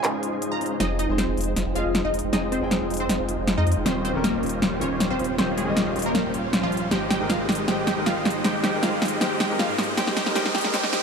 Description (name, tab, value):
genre	future bass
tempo	157 BPM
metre	4/4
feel	half-time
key	F minor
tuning	A4 = 437 Hz
part	wide unison pluck	melody	0.0-11.0 s	F3 to Bb5	-28 LUFS	right 1 dB	phaser, ping-pong delay
part	concert harp	arpeggios	0.0-3.3 s	Eb4 to F5	-34 LUFS	left 3 dB	ping-pong delay
part	dense compressed supersaw	riff	0.0-11.0 s	G3 to G5	-28 LUFS	right 1 dB	low-pass filter
part	big-room dance drum kit	drums	0.0-11.0 s	handclaps, hi-hat, snare drum	-25 LUFS	equal	overdrive
part	warm baby grand piano	accompaniment	0.8-11.0 s	Eb3 to G5	-30 LUFS	left 2 dB	ping-pong delay
part	saturated sub bass	bass	0.8-11.0 s	Eb1 to Ab2	-31 LUFS	equal	none
part	riser	sound effects	3.4-11.0 s	none	-34 LUFS	right 2 dB	none
room	moderate lush hall reverb, RT60 1.9 s, digital ambience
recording	dark, warm production, high-pass filter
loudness	-21 LUFS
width	side -6 dB against mid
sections	0.8-11.0 A section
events	build-up 0.8-11.0; drum fill 0.8-11.0; filter sweep on supersaw synth 0.8-11.0; filter sweep 0.8-11.0; riser 3.4-11.0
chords	0.0 Dbmaj9; 0.8 Fm7; 3.9 Eb13; 6.9 Abmaj7; 10.0 Dbsus2